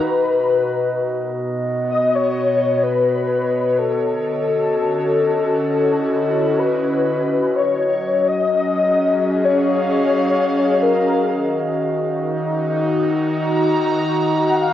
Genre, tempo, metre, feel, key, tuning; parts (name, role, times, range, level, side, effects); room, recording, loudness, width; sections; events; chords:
ambient; 64 BPM; 4/4; straight; B lydian; A4 = 443 Hz
breathy flute-like synth lead; melody; 0.0-14.7 s; A4 to F#5; -19 LUFS; left 4 dB; ensemble chorus, cassette tape, analog delay
airy breathy pad; sustained chords; 0.0-14.7 s; B2 to A#5; -21 LUFS; equal; chorus, cassette tape
soft synth bell; arpeggios; 0.0-0.5 s; E#5 to F#5; -44 LUFS; right 4 dB
glass harmonica; texture; 0.0-14.7 s; F#4 to D#5; -23 LUFS; right 1 dB; cassette tape
wet spring reverb, RT60 1.5 s; home recording on cassette; -16 LUFS; side -11 dB against mid
0.0-14.7 A section
fade-in on analog synth pad 0.0-14.7
0.0 Bmaj7; 3.8 Dmaj7; 7.5 F#5; 11.3 D#m